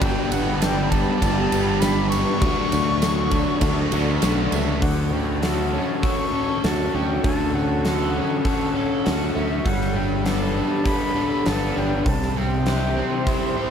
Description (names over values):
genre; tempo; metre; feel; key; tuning
rock, shoegaze and dream pop; 100 BPM; 4/4; straight; D major; A4 = 440 Hz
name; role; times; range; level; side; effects
bright reedy concert flute; melody; 0.0-13.6 s; E5 to C#6; -29 LUFS; left 1 dB; tape echo
hollow soft pad; sustained chords; 0.0-13.7 s; G4 to C#6; -31 LUFS; right 1 dB; chorus
crunchy overdriven guitar; riff; 0.0-13.7 s; G2 to C5; -25 LUFS; left 6 dB; lush chorus
crunchy overdriven guitar; riff; 0.0-4.8 s; G2 to D4; -28 LUFS; equal; none
overdriven semi-hollow guitar; riff; 0.0-13.7 s; G2 to C5; -28 LUFS; right 8 dB; reverse reverb
modern bright fingered electric bass; bass; 0.0-13.0 s; G1 to D2; -25 LUFS; equal; none
huge arena drum kit; drums; 0.0-13.4 s; hi-hat, kick drum, ride cymbal, snare drum; -25 LUFS; equal; none
tambourine; percussion; 0.0-4.7 s; none; -40 LUFS; right 14 dB; none
room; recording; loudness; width
wet lush hall reverb, RT60 2.7 s; dreamy mix soaked in reverb; -19 LUFS; side -8 dB against mid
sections
0.0-4.8 A section; 4.8-13.7 B section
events
none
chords
0.0 G; 2.4 Dmaj7; 9.7 Gadd9; 12.1 C